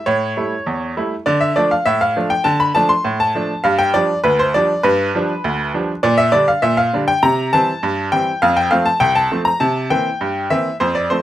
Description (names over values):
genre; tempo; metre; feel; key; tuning
ragtime piano; 100 BPM; 2/4; straight; unclear; A4 = 440 Hz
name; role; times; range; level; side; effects
bright upright piano; solo; 0.0-11.2 s; C2 to C6; -14 LUFS; equal; none
room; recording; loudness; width
moderate small room reverb, RT60 0.5 s; rough home demo mix, vinyl crackle; -14 LUFS; side -13 dB against mid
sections
0.0-11.2 A section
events
none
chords
0.0 A7; 1.3 Dm; 3.6 G7; 6.0 Gm/Bb; 7.2 C; 8.4 F; 9.6 C7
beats
| 0.06 0.66 | 1.26 1.86 | 2.46 3.05 | 3.65 4.25 | 4.84 5.44 | 6.04 6.63 | 7.23 7.83 | 8.42 9.02 | 9.61 10.21 | 10.81